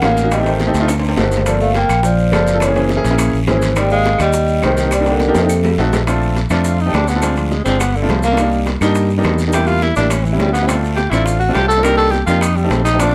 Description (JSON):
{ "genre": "Afro-Cuban jazz", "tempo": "208 BPM", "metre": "4/4", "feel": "straight", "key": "Bb major", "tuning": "A4 = 440 Hz", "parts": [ { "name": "vibraphone with soft mallets", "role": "melody", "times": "0.0-5.8 s", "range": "A4 to G5", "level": "-21 LUFS", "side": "equal", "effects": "none" }, { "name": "breathy tenor saxophone", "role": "second line", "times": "0.0-13.1 s", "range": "C3 to Bb4", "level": "-21 LUFS", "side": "equal", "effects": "none" }, { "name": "clear grand piano", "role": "accompaniment", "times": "0.0-13.1 s", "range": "G3 to A4", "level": "-21 LUFS", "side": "equal", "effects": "none" }, { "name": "fingered electric bass", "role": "bass", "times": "0.0-13.1 s", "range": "Gb1 to G2", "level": "-20 LUFS", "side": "equal", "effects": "none" }, { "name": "bongos", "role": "percussion", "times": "0.0-13.1 s", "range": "none", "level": "-30 LUFS", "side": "equal", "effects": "none" }, { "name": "claves", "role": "percussion", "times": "0.0-13.1 s", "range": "none", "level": "-33 LUFS", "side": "equal", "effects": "none" }, { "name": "guiro", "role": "percussion", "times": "0.0-13.1 s", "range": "none", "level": "-33 LUFS", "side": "equal", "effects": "none" }, { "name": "maracas", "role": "percussion", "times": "0.0-13.1 s", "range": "none", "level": "-35 LUFS", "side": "equal", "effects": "none" }, { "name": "timbales", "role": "percussion", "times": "0.0-13.1 s", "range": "none", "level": "-27 LUFS", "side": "equal", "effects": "none" } ], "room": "moderate club reverb, RT60 0.8 s", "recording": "none", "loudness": "-15 LUFS", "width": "mono", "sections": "0.0-6.1 A section; 6.1-13.1 B section", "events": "drum fill 0.9-1.5, 5.2-6.1; tenor saxophone solo 6.1-13.1", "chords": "0.3 Am7b5; 0.9 D7b9; 1.5 Gm11; 2.6 Gb9; 3.8 Abmaj9; 4.9 Cm9; 5.5 F7b9; 6.1 Bbmaj7; 7.2 Dm7b5; 7.8 G7; 8.4 Cm7; 9.5 Em7b5; 10.1 A7; 10.7 Dm7; 11.8 Cm7; 12.4 F7" }